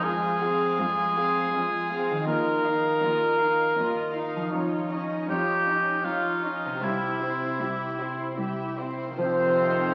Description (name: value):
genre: cinematic, emotional film score for orchestra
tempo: 79 BPM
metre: 3/4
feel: rubato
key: F minor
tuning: A4 = 439 Hz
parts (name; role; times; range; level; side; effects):
- clear cor anglais; melody; 0.0-8.4 s; E4 to Bb4; -28 LUFS; equal; none
- warm symphonic violin section; melody; 0.0-9.9 s; C5 to Ab5; -39 LUFS; equal; none
- warm studio viola section; accompaniment; 0.0-9.9 s; Eb3 to Ab4; -34 LUFS; equal; none
- concert harp; arpeggios; 0.0-9.9 s; C3 to F5; -36 LUFS; equal; none
- warm chamber cello section; bass; 0.0-9.9 s; C2 to C3; -40 LUFS; equal; none
- concert flute; second line; 9.2-9.9 s; C5; -26 LUFS; equal; none
- warm chamber violin section; second line; 9.2-9.9 s; C4 to F4; -38 LUFS; equal; none
- warm clarinet; second line; 9.2-9.9 s; C4; -34 LUFS; equal; none
- warm French horn section; sustained chords; 9.2-9.9 s; F4; -36 LUFS; equal; none
- rich symphonic double bass section; bass; 9.2-9.9 s; F2; -40 LUFS; equal; none
room: wet scoring stage reverb, RT60 2.0 s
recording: very old 78 rpm record, vinyl crackle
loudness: -26 LUFS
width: mono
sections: 0.0-9.2 A section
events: none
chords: 0.1 Fm; 2.3 Ebsus2; 4.5 Dbadd9/F; 6.8 C; 9.2 F7(no3)